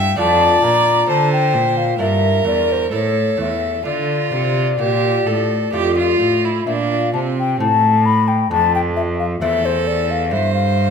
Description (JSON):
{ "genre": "classical, baroque-style sonata movement with continuo", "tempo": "66 BPM", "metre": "4/4", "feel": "rubato", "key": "D minor, A minor from 7.6 s", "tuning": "A4 = 440 Hz", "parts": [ { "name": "mellow hollow silver concert flute", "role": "melody", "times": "0.0-10.9 s", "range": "C5 to B5", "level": "-18 LUFS", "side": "left 8 dB", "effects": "none" }, { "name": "clear violin", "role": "second line", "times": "0.0-10.9 s", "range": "C4 to E5", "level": "-20 LUFS", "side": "right 7 dB", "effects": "none" }, { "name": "lute", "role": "accompaniment", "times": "0.0-10.9 s", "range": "E2 to F4", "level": "-24 LUFS", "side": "left 2 dB", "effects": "none" }, { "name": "clear cello", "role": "bass", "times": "0.0-10.9 s", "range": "E2 to D3", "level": "-20 LUFS", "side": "right 2 dB", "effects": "none" } ], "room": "wet recital hall reverb, RT60 1.3 s", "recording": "none", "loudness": "-14 LUFS", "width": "side -6 dB against mid", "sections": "0.0-7.6 A section; 7.6-10.9 A section", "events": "none", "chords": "0.2 Dm/F; 2.0 Em7b5/G; 2.9 A; 3.9 Dm; 7.6 Am", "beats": "| 0.18 1.09 1.99 2.91 | 3.85 4.79 5.73 6.66 | 7.59 8.50 9.41 10.31" }